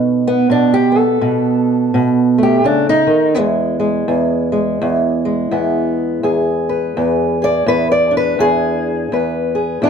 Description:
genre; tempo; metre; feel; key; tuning
acoustic country blues, solo or duo; 84 BPM; 4/4; swing 60% on 8ths; E mixolydian; A4 = 440 Hz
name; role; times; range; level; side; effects
fingerpicked old ladder-braced acoustic guitar; solo; 0.0-9.9 s; E2 to D5; -13 LUFS; equal; none
room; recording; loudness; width
moderate small room reverb, RT60 0.5 s; dark, warm production; -13 LUFS; side -7 dB against mid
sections
0.0-9.1 A section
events
steel-string acoustic guitar solo 0.0-9.1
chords
0.0 B7; 3.4 E7; 9.1 E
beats
| 0.49 1.20 1.92 2.64 | 3.36 4.08 4.79 5.51 | 6.23 6.95 7.67 8.39 | 9.11 9.83

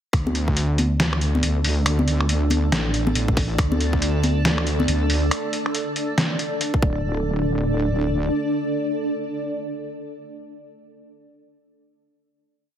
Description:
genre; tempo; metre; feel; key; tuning
deep dubstep; 139 BPM; 4/4; swing 60% on 16ths, half-time; unclear; A4 = 440 Hz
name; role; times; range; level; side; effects
granular cloud pad; sustained chords; 1.2-10.1 s; D4 to D5; -26 LUFS; right 1 dB; built-in reverb
wobble bass; bass; 0.1-8.3 s; D1 to D2; -22 LUFS; equal; chorus
electronic kick drum; drums; 0.1-0.5, 3.3-4.0, 6.7-6.9 s; none; -21 LUFS; equal; none
trip hop sampler-style drum kit; drums; 0.1-6.7 s; finger snaps, hi-hat, snare drum; -24 LUFS; equal; none
congas; percussion; 0.3-4.9 s; none; -27 LUFS; left 1 dB; dub echo
room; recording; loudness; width
light reverb; heavily compressed radio sound; -19 LUFS; side -10 dB against mid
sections
0.1-7.0 drop; 7.0-10.5 final hit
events
drop 0.1-7.0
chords
0.1 D5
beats
| 0.13 0.56 1.00 1.43 | 1.86 2.29 2.72 3.15 | 3.59 4.02 4.45 4.88 | 5.31 5.75 6.18 6.61 | 7.04 7.47 7.90 8.34 | 8.77 9.20 9.63 10.06

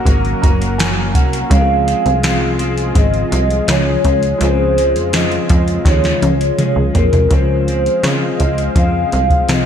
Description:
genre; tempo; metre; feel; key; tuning
indie pop, bedroom pop; 83 BPM; 4/4; straight; Db major; A4 = 441 Hz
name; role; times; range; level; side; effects
hollow clarinet-like synth lead; melody; 0.0-9.7 s; Bb4 to Gb5; -18 LUFS; equal; wide subtle chorus, slapback echo
clean electric guitar; accompaniment; 0.0-9.7 s; Gb2 to Db4; -22 LUFS; left 5 dB; wide subtle chorus, warbly pitch drift
warm upright piano; accompaniment; 0.0-9.7 s; Ab3 to Bb5; -26 LUFS; right 5 dB; cassette tape, slapback echo
warm analog pad; sustained chords; 0.0-9.7 s; Db3 to F5; -24 LUFS; right 1 dB; chorus
plucky analog bass; bass; 0.1-9.7 s; Gb1 to Db3; -17 LUFS; equal; none
soft vintage rhythm box; drums; 0.1-9.7 s; hi-hat, kick drum, snare drum, toms; -16 LUFS; equal; none
room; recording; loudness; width
moderate lush hall reverb, RT60 2.6 s; big arena sound; -12 LUFS; side -8 dB against mid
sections
0.0-7.3 A section; 7.3-9.7 B section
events
upright piano fill 0.1-1.5; drum fill 5.9-7.3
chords
0.0 Gb; 1.5 Dbmaj7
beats
0.06 0.79 | 1.51 2.24 2.96 3.69 | 4.41 5.13 5.86 6.58 | 7.31 8.04 8.76 9.48

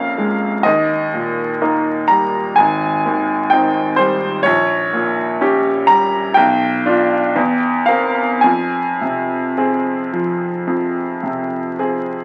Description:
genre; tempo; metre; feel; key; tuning
classical, romantic nocturne for solo piano; 52-65 BPM; 4/4; rubato; F minor; A4 = 441 Hz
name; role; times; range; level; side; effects
bright baby grand piano; solo; 0.0-12.2 s; Ab1 to Bb5; -17 LUFS; equal; none
room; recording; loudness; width
moderate large studio reverb, RT60 1.1 s; very old 78 rpm record, vinyl crackle; -17 LUFS; mono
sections
0.0-12.2 A section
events
none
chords
0.0 Bbm7; 0.7 Eb; 2.6 Abmaj7; 4.5 Gdim/Bb; 6.4 Bdim; 7.4 C7/E; 8.4 Fm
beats
| 0.66 1.61 2.58 3.53 | 4.46 5.42 6.37 7.36 | 8.44 9.57 10.67 11.79

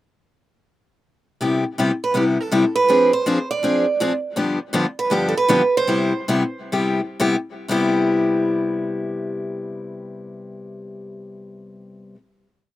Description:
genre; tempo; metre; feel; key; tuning
jazz; 115-164 BPM; 4/4; swing 63% on 8ths; C major; A4 = 441 Hz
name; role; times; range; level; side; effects
picked steel-string acoustic guitar; accompaniment; 1.4-12.2 s; G2 to Ab4; -20 LUFS; left 2 dB; none
picked steel-string acoustic guitar; melody; 2.0-7.2 s; G4 to D5; -19 LUFS; right 4 dB; none
room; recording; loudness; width
little or no reverb; recorded outdoors, with no room sound; -18 LUFS; side -14 dB against mid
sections
1.4-7.7 A section; 7.7-11.8 final chord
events
slowing down 4.4-7.7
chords
1.4 Cmaj7; 2.9 Fm6; 4.4 G7; 5.9 Cmaj7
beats
| 1.42 1.79 2.16 2.52 | 2.89 3.26 3.63 4.00 | 4.36 4.73 5.10 5.49 | 5.88 6.30 6.73 7.20 | 7.69 8.21 8.73 9.25 | 9.77 10.29 10.80 11.32

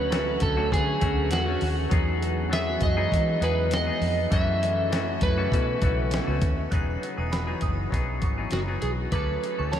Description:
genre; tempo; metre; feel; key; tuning
indie pop, bedroom pop; 100 BPM; 4/4; swing 55% on 16ths; E major; A4 = 440 Hz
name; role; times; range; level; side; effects
electric slide guitar; melody; 0.0-9.8 s; F#4 to E5; -28 LUFS; right 1 dB; lush chorus, diffuse ambient delay
semi-hollow electric guitar; accompaniment; 0.0-9.8 s; F#2 to A4; -31 LUFS; left 4 dB; wide subtle chorus, warbly pitch drift
lush unison pad; sustained chords; 0.0-6.7 s; C#3 to F#4; -35 LUFS; equal; chorus
vintage muted fingered electric bass; bass; 0.0-9.8 s; E1 to E3; -28 LUFS; equal; none
dusty soul sampler-style drum kit; drums; 0.1-9.8 s; hi-hat, kick drum, snare drum; -28 LUFS; equal; none
glassy synth bell; second line; 6.7-9.8 s; A5 to F#6; -38 LUFS; right 6 dB; tremolo, lush chorus, diffuse ambient delay
room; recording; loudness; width
wet huge ambient reverb, RT60 9.2 s; dreamy mix soaked in reverb; -23 LUFS; side -10 dB against mid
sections
0.0-6.7 A section; 6.7-9.8 B section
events
none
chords
0.0 Dmaj7; 1.9 Emaj9; 4.3 F#m7; 5.5 B9sus4; 6.7 Emaj9; 9.1 Dmaj7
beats
0.12 0.72 1.32 | 1.92 2.52 3.12 3.72 | 4.32 4.92 5.51 6.12 | 6.72 7.32 7.92 8.52 | 9.12 9.72

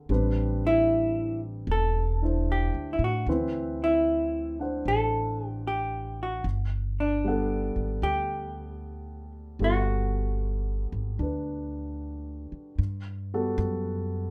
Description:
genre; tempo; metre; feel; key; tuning
jazz ballad; 76 BPM; 4/4; swing 67% on 8ths; G major; A4 = 440 Hz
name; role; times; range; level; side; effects
dark grand piano; accompaniment; 0.0-14.3 s; E3 to F#5; -35 LUFS; equal; none
upright bass; bass; 0.1-14.3 s; E1 to A2; -32 LUFS; equal; none
vintage hollow-body jazz guitar; melody; 0.7-12.0 s; D4 to A4; -29 LUFS; equal; none
room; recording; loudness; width
wet small room ambience, RT60 0.5 s; rough home demo mix; -28 LUFS; mono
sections
0.0-12.8 A section; 12.8-14.3 B section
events
none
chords
0.1 Am11; 3.3 D13; 6.4 Gmaj9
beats
| 0.09 0.89 1.68 2.48 | 3.27 4.06 4.86 5.65 | 6.44 7.23 8.02 8.81 | 9.61 10.40 11.20 11.99 | 12.79 13.58

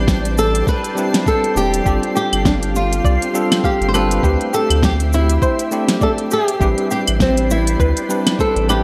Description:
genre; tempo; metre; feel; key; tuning
sunset chillout; 101 BPM; 4/4; swing 57% on 16ths; A minor; A4 = 438 Hz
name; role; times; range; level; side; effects
flamenco guitar; melody; 0.0-8.8 s; C4 to C5; -22 LUFS; equal; vintage 12-bit sampler grit, digital delay
bell-like tine electric piano; accompaniment; 0.0-8.8 s; G3 to B4; -24 LUFS; equal; digital delay
ethereal airy pad; sustained chords; 0.0-8.8 s; G4 to A5; -29 LUFS; equal; ensemble chorus, built-in reverb
round analog bass; bass; 0.0-8.8 s; E1 to D2; -21 LUFS; equal; none
twinkling granular texture; texture; 0.0-8.8 s; C4 to C7; -32 LUFS; equal; built-in reverb, subtle chorus
electronic kick drum; drums; 0.1-8.5 s; none; -22 LUFS; equal; none
smooth R&B drum kit; drums; 0.1-8.8 s; cabasa, claves, hi-hat, snare drum; -23 LUFS; equal; gated reverb
soft round pluck; arpeggios; 1.9-8.8 s; G4 to F5; -28 LUFS; equal; chorus, digital delay
room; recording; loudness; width
moderate plate reverb, RT60 1.6 s, digital ambience; bright 1980s-style digital production; -17 LUFS; mono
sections
0.0-8.8 A section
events
none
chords
0.0 Am11; 1.9 G7sus4; 4.2 D9sus4; 6.3 Am11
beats
0.08 0.67 1.26 | 1.86 2.45 3.05 3.64 | 4.23 4.83 5.42 6.02 | 6.61 7.21 7.80 8.39

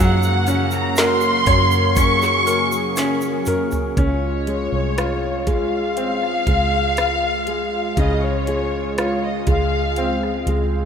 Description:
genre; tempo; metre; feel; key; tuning
pop ballad; 60 BPM; 4/4; straight; Db major; A4 = 440 Hz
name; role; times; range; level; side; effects
warm studio violin section; melody; 0.0-10.4 s; Db5 to Db6; -21 LUFS; left 1 dB; none
bright baby grand piano; accompaniment; 0.0-10.9 s; Db3 to Db5; -23 LUFS; equal; none
lush unison pad; sustained chords; 0.0-10.9 s; Db3 to Ab4; -25 LUFS; equal; chorus
vintage muted fingered electric bass; bass; 0.0-10.9 s; C2 to Gb2; -23 LUFS; equal; none
egg shaker; percussion; 0.2-4.0 s; none; -35 LUFS; right 3 dB; none
smooth R&B drum kit; drums; 0.5-10.7 s; hi-hat, kick drum, rim click, snare drum, toms; -22 LUFS; equal; none
room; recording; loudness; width
moderate lush hall reverb, RT60 2.8 s; rough home demo mix; -17 LUFS; side -7 dB against mid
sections
0.0-4.0 A section; 4.0-10.9 B section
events
drum fill 3.0-4.0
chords
0.0 Gb; 4.0 Dbmaj7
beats
0.97 1.97 2.97 | 3.97 4.97 5.97 6.97 | 7.97 8.97 9.97

